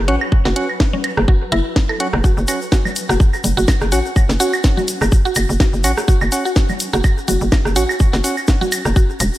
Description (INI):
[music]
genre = minimal techno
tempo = 125 BPM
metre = 4/4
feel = swing 55% on 16ths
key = F# minor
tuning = A4 = 441 Hz
[part]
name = hollow knocking FM bass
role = bass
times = 0.0-9.3 s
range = E1 to A1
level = -18 LUFS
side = equal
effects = sidechain pumping
[part]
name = swarming drone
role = texture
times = 0.1-9.4 s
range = F#3 to B4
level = -33 LUFS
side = equal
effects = built-in reverb, sidechain pumping
[part]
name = mallet-like synth pluck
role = riff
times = 0.1-9.0 s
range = C#4 to A4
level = -23 LUFS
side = equal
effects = chorus, sidechain pumping, analog delay
[part]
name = percussive organ stab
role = stabs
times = 0.1-8.4 s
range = C#4 to F#5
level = -24 LUFS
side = right 1 dB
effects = chorus, cassette tape, analog delay
[part]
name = garage drum kit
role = drums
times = 0.1-9.3 s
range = hi-hat, snare drum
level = -23 LUFS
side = equal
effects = none
[part]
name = electronic claves, congas and rim click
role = percussion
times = 0.2-9.3 s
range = none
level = -24 LUFS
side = right 2 dB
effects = analog delay
[part]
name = electronic kick drum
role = drums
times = 0.3-9.1 s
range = none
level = -14 LUFS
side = equal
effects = none
[part]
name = tube shaker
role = percussion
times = 2.2-9.4 s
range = none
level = -27 LUFS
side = left 3 dB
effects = none
[sound]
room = light reverb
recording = none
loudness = -14 LUFS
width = side -15 dB against mid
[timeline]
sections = 0.0-9.4 A section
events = none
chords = 0.0 F#5